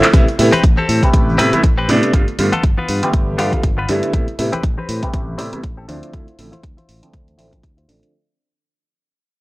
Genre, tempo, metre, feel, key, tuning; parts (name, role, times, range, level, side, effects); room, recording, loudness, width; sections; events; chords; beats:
filtered disco house; 120 BPM; 4/4; swing 57% on 16ths; A minor; A4 = 444 Hz
bright concert grand piano; accompaniment; 0.0-8.1 s; C3 to B4; -18 LUFS; right 1 dB; phaser, vintage 12-bit sampler grit, sidechain pumping, low-pass filter
direct-recorded clean electric guitar; riff; 0.0-8.1 s; B3 to D5; -20 LUFS; left 2 dB; vintage 12-bit sampler grit, sidechain pumping, low-pass filter
punchy analog drum machine; drums; 0.0-8.1 s; handclaps, hi-hat, shaker; -23 LUFS; equal; sidechain pumping on hats, sidechain pumping on perc
tube shaker and congas; percussion; 0.0-8.1 s; -28 LUFS; left 2 dB; sidechain pumping on perc, low-pass filter on perc
modern bright fingered electric bass; bass; 0.1-8.0 s; G1 to A2; -20 LUFS; equal; transformer saturation, sidechain pumping, low-pass filter
electronic kick drum; drums; 0.1-7.7 s; -14 LUFS; equal
little or no reverb; dry, gritty hardware recording; -13 LUFS; side -20 dB against mid
0.1-8.1 A section
fade-out 0.1-8.1; filter sweep 0.1-8.1
0.1 Am9; 2.1 G9; 4.1 Am9; 5.9 Dm9
| 0.14 0.64 1.14 1.64 | 2.13 2.63 3.13 3.63 | 4.13 4.63 5.13 5.63 | 6.13 6.63 7.13 7.63